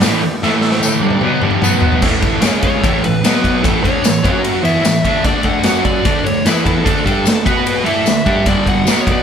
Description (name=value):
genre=garage rock duo or trio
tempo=149 BPM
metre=4/4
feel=straight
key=A mixolydian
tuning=A4 = 440 Hz
part: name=overdriven combo organ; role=sustained chords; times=0.0-9.2 s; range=A3 to G5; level=-28 LUFS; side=left 1 dB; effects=none
part: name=fuzz guitar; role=riff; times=0.0-9.2 s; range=G2 to B4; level=-15 LUFS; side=right 1 dB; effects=distortion
part: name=raw garage drum kit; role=drums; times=0.0-9.2 s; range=crash cymbal, hi-hat, kick drum, ride cymbal, snare drum, toms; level=-16 LUFS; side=equal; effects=none
part: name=tambourine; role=percussion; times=0.0-9.0 s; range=none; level=-24 LUFS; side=left 6 dB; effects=none
part: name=fuzz lead guitar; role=melody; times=2.6-9.2 s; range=A4 to F#5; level=-20 LUFS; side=left 1 dB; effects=distortion
room=light reverb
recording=band playing live in one room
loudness=-12 LUFS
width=side -7 dB against mid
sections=0.0-2.0 A section; 2.0-9.2 B section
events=drum fill 0.4-2.0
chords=0.4 A5; 1.0 G5; 1.6 B5; 2.0 A; 2.4 C#5; 2.8 A; 3.2 B5; 3.6 A; 4.2 F#5; 4.6 A; 5.3 D5; 5.7 F#5; 6.1 D5; 6.5 E5; 6.9 D5; 7.5 B5; 7.9 D5; 8.5 G5